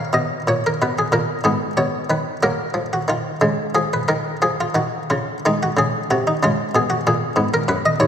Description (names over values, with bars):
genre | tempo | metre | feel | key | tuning
classical, baroque-style suite movement for harpsichord | 60 BPM (dotted quarters) | 6/8 | rubato | unclear | A4 = 440 Hz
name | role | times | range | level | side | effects
buff-stop harpsichord | solo | 0.0-8.1 s | Eb2 to E#5 | -17 LUFS | equal | none
room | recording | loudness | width
wet church reverb, RT60 3.1 s | none | -17 LUFS | side -8 dB against mid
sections
0.0-8.1 A section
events
none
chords
0.0 N.C.; 1.4 G#madd11; 2.4 F#; 3.4 C#; 5.4 G#; 6.4 C#5; 7.4 Fdim (rootless)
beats
0.45 | 1.44 2.44 | 3.44 4.44 | 5.44 6.42 | 7.39